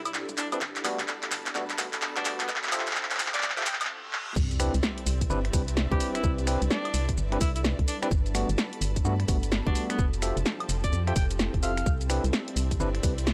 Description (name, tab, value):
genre	UK garage, two-step garage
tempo	128 BPM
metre	4/4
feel	swing 63% on 16ths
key	C major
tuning	A4 = 440 Hz
part	ethereal airy pad	sustained chords	0.0-13.3 s	B3 to B4	-43 LUFS	equal	ensemble chorus, built-in reverb, sidechain pumping
part	organ-like FM bass	bass	0.0-13.3 s	F1 to G2	-31 LUFS	equal	sidechain pumping
part	clear studio string section	texture	0.0-13.3 s	F3 to B5	-45 LUFS	equal	sidechain pumping
part	bright alto saxophone	melody	0.1-11.9 s	B3 to G5	-38 LUFS	equal	none
part	punchy analog drum machine	drums	0.1-13.3 s	crash cymbal, finger snaps, handclaps, hi-hat, shaker, snare drum, woodblock	-32 LUFS	equal	none
part	electronic kick drum	drums	0.3-13.2 s	none	-30 LUFS	equal	high-pass filter on kick
part	overdriven tine electric piano	stabs	0.5-13.1 s	G3 to E5	-36 LUFS	equal	tape echo
part	reverse cymbal and sub drop	sound effects	3.9-6.2 s	none	-42 LUFS	equal	none
room	digital ambience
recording	dry, gritty hardware recording, transformer saturation, high-pass filter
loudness	-28 LUFS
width	mono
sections	0.0-4.4 A section; 4.4-13.3 B section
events	build-up 0.0-4.4; drum fill 0.0-3.9, 4.1; filter sweep on tine electric piano 0.0-4.4; stop 3.9-4.4; reverse cymbal 3.9-4.4; drop 4.4-13.3; impact 4.4-6.2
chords	0.0 Cadd9; 0.6 Gmaj9; 2.5 Fmaj9; 4.4 Cmaj9; 8.1 Gmaj9; 10.0 Fmaj9; 11.9 Cmaj9